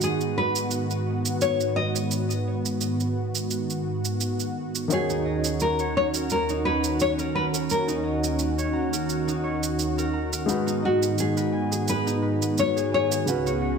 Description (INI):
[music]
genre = sunset chillout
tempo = 86 BPM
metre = 4/4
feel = swing 55% on 16ths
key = unclear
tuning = A4 = 437 Hz
[part]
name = nylon-string guitar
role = melody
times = 0.0-13.8 s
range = F#4 to D#5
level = -26 LUFS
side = left 2 dB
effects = ping-pong delay
[part]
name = dark grand piano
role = accompaniment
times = 0.0-13.8 s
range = C#3 to C#5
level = -31 LUFS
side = moving between left 4 dB and right 5 dB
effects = auto-pan, low-pass filter, ping-pong delay
[part]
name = lush unison pad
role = sustained chords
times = 0.0-13.8 s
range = C#2 to F#4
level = -26 LUFS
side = right 1 dB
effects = chorus
[part]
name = shaker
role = drums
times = 0.0-13.6 s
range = none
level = -32 LUFS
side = right 8 dB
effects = overdrive, small room reverb
[part]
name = concert harp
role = arpeggios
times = 5.1-13.8 s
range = D#4 to A#5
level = -29 LUFS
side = right 1 dB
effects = ping-pong delay
[sound]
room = moderate lush hall reverb, RT60 2.1 s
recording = none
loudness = -23 LUFS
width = side -6 dB against mid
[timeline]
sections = 0.0-13.8 A section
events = filter sweep on grand piano 0.0-13.8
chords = 0.0 G#m7; 4.9 D#m7; 10.5 G#m7; 13.3 C#7sus4